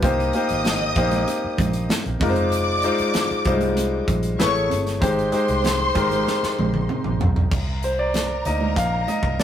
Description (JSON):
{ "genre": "lush 1970s-style soul", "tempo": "96 BPM", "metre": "4/4", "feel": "straight", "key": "C minor", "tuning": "A4 = 442 Hz", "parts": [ { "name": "warm studio string section", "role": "second line", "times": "0.0-9.4 s", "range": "Bb4 to Eb6", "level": "-27 LUFS", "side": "left 1 dB", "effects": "none" }, { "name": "warm baby grand piano", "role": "accompaniment", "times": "0.0-9.4 s", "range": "G3 to F5", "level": "-22 LUFS", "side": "left 2 dB", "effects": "none" }, { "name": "vintage muted fingered electric bass", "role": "bass", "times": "0.0-9.4 s", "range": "F1 to D2", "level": "-26 LUFS", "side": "right 1 dB", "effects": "none" }, { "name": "modern studio drum kit", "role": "drums", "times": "0.0-9.4 s", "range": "crash cymbal, hi-hat, kick drum, snare drum, toms", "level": "-25 LUFS", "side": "equal", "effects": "none" }, { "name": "congas", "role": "percussion", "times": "0.0-9.4 s", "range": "none", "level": "-31 LUFS", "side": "right 4 dB", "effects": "none" } ], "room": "moderate studio reverb, RT60 0.6 s", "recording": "rough rehearsal-room recording, tube saturation", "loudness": "-19 LUFS", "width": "side -10 dB against mid", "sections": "0.0-7.5 A section; 7.5-9.4 B section", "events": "drum fill 6.3-7.5; grand piano solo 7.5-9.4", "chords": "0.0 Cm7; 2.2 Fm7; 4.4 Amaj7; 5.0 Abmaj7; 7.5 Cm9" }